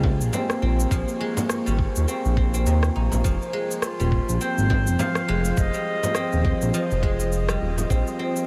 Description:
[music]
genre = organic downtempo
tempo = 103 BPM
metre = 4/4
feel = swing 58% on 16ths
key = F minor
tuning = A4 = 440 Hz
[part]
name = ethereal airy pad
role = sustained chords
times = 0.0-8.5 s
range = F3 to Db6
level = -33 LUFS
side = equal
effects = ensemble chorus, built-in reverb, sidechain pumping
[part]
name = guzheng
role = arpeggios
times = 0.0-8.5 s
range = C3 to Eb4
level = -30 LUFS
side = equal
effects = diffuse ambient delay
[part]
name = smooth synth bass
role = bass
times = 0.0-8.0 s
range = Eb1 to Eb2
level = -25 LUFS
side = equal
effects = none
[part]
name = electronic kick drum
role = drums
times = 0.0-8.0 s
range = none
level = -26 LUFS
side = equal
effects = none
[part]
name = frame drum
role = percussion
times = 0.0-7.9 s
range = none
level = -34 LUFS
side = equal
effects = none
[part]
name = electronic shaker and rim click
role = drums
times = 0.2-8.5 s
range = none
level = -35 LUFS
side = equal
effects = none
[part]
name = mellow clarinet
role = melody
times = 3.8-6.7 s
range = F4 to F5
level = -32 LUFS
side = equal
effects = diffuse ambient delay
[sound]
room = moderate huge ambient reverb, RT60 7.3 s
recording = dreamy mix soaked in reverb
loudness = -23 LUFS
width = mono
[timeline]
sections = 0.0-8.5 A section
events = none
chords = 0.0 Bbm7; 3.2 Fm7; 7.9 Bb5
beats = 0.33 | 0.91 1.50 2.08 2.66 | 3.25 3.83 4.41 4.99 | 5.58 6.16 6.74 7.32 | 7.91

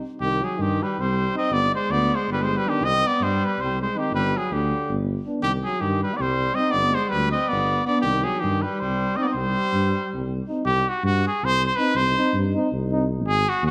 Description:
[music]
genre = balkan folk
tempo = 322 BPM (eighths)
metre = 7/8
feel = straight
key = C hungarian minor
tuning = A4 = 437 Hz
[part]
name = dark euphonium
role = accompaniment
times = 0.0-13.1 s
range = B3 to C4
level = -33 LUFS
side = equal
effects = none
[part]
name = warm trombone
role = accompaniment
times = 0.0-13.0 s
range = D4 to Eb4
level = -33 LUFS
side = equal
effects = none
[part]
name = clear trumpet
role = melody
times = 0.2-13.7 s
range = F#4 to Eb5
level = -26 LUFS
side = equal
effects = none
[part]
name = warm alto saxophone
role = second line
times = 0.2-10.3 s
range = D3 to C4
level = -30 LUFS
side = equal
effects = none
[part]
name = dark tuba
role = bass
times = 0.2-13.7 s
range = G1 to G2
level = -28 LUFS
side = equal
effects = none
[sound]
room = moderate recital hall reverb, RT60 1.6 s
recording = none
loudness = -23 LUFS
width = mono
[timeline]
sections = 0.2-10.6 A section; 10.6-13.7 B section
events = none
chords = 0.2 Cm; 1.5 G; 2.8 Cm; 4.1 G; 5.4 Cm; 6.7 G; 8.0 Cm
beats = 0.01 | 0.20 0.38 0.57 0.76 0.94 1.13 1.32 | 1.50 1.69 1.88 2.06 2.25 2.44 2.62 | 2.81 3.00 3.18 3.37 3.56 3.74 3.93 | 4.12 4.30 4.49 4.67 4.86 5.05 5.24 | 5.42 5.61 5.79 5.98 6.17 6.36 6.54 | 6.73 6.91 7.10 7.29 7.47 7.66 7.85 | 8.03 8.22 8.41 8.59 8.78 8.97 9.15 | 9.34 9.53 9.71 9.90 10.08 10.27 10.46 | 10.64 10.83 11.01 11.20 11.39 11.57 11.76 | 11.94 12.13 12.31 12.50 12.69 12.87 13.06 | 13.24 13.43 13.62

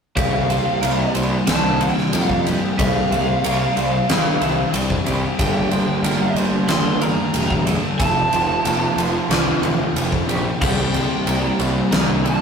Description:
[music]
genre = rock, shoegaze and dream pop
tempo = 92 BPM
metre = 4/4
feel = straight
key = C mixolydian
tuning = A4 = 440 Hz
[part]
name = lead guitar through a small cranked amp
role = melody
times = 0.2-12.4 s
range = F5 to C6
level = -24 LUFS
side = right 2 dB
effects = overdrive
[part]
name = twelve-string electric guitar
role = arpeggios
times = 0.2-12.4 s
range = Bb3 to C5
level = -31 LUFS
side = right 5 dB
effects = none
[part]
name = overdriven electric guitar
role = riff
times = 0.2-12.4 s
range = G2 to A4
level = -24 LUFS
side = right 3 dB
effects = none
[part]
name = thick fuzz guitar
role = riff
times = 0.2-12.4 s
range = F2 to C4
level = -25 LUFS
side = left 5 dB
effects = distortion
[part]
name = fuzz picked electric bass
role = bass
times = 0.2-12.3 s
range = E1 to F2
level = -24 LUFS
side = equal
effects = overdrive
[part]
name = huge arena drum kit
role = drums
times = 0.2-12.4 s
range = crash cymbal, kick drum, ride cymbal, snare drum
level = -21 LUFS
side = equal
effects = none
[sound]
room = wet studio reverb, RT60 0.5 s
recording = rough rehearsal-room recording, tube saturation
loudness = -16 LUFS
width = side -6 dB against mid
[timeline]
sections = 0.2-12.4 A section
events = none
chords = 0.2 C7sus4; 5.4 Gm; 8.0 F; 10.6 C7(no3)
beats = | 0.17 0.83 1.48 2.13 | 2.79 3.44 4.09 4.74 | 5.40 6.05 6.70 7.36 | 8.01 8.66 9.32 9.97 | 10.63 11.28 11.94

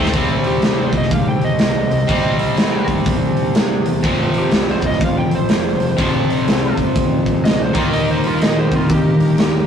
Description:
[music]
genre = blues rock power trio and southern rock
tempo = 123 BPM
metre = 4/4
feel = swing 62% on 8ths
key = C minor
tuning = A4 = 440 Hz
[part]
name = overdriven slide guitar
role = melody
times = 0.0-9.7 s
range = F4 to G5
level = -23 LUFS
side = right 1 dB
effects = none
[part]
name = overdriven tonewheel organ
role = sustained chords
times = 0.0-0.1, 7.9-9.7 s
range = Bb3 to Bb4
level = -30 LUFS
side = right 2 dB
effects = none
[part]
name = crunchy overdriven guitar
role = riff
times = 0.0-9.7 s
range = F2 to Eb4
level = -18 LUFS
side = left 1 dB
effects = none
[part]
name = growling fingered electric bass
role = bass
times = 0.0-9.6 s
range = F1 to C3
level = -25 LUFS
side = equal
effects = overdrive
[part]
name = big rock drum kit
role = drums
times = 0.1-9.5 s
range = hi-hat, kick drum, snare drum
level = -18 LUFS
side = equal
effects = vintage 12-bit sampler grit
[sound]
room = wet studio reverb, RT60 0.5 s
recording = rough rehearsal-room recording, warm saturation, lossy compression artefacts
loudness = -14 LUFS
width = side -8 dB against mid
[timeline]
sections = 0.1-9.7 A section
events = none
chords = 0.1 Cm; 4.0 F; 7.7 Eb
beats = | 0.14 0.63 1.11 1.60 | 2.09 2.58 3.06 3.55 | 4.04 4.52 5.01 5.50 | 5.98 6.47 6.96 7.44 | 7.93 8.41 8.90 9.38

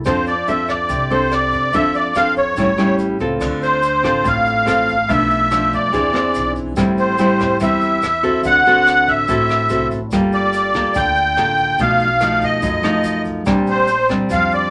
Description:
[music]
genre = bossa nova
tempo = 143 BPM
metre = 4/4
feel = straight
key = F major, D minor from 3.4 s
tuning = A4 = 439 Hz
[part]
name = nylon-string guitar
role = accompaniment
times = 0.0-14.7 s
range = F#2 to A4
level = -21 LUFS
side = equal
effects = none
[part]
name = upright bass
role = bass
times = 0.0-14.7 s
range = G1 to F#2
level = -33 LUFS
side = equal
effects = none
[part]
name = musette accordion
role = melody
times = 0.1-14.7 s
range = C5 to G5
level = -18 LUFS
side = equal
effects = none
[part]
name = jazz brush drum kit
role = drums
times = 0.1-14.6 s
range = crash cymbal, hi-hat, kick drum, rim click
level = -32 LUFS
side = equal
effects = none
[part]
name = tube shaker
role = percussion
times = 0.1-14.7 s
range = none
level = -44 LUFS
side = equal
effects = none
[sound]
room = wet small room ambience, RT60 0.5 s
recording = none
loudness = -16 LUFS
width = mono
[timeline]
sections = 0.0-3.4 A section; 3.4-14.7 B section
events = none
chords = 0.1 F6; 2.6 A7; 3.4 Dm7; 5.1 Bm7b5; 5.9 E7b13; 6.8 Am7; 8.4 D7; 10.1 Gm9; 11.8 B7#11; 13.5 Bb69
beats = | 0.06 0.47 0.90 1.31 | 1.74 2.15 2.58 2.99 | 3.41 3.83 4.25 4.67 | 5.09 5.51 5.93 6.35 | 6.77 7.19 7.61 8.03 | 8.45 8.86 9.28 9.70 | 10.12 10.54 10.96 11.38 | 11.79 12.21 12.63 13.05 | 13.47 13.88 14.30

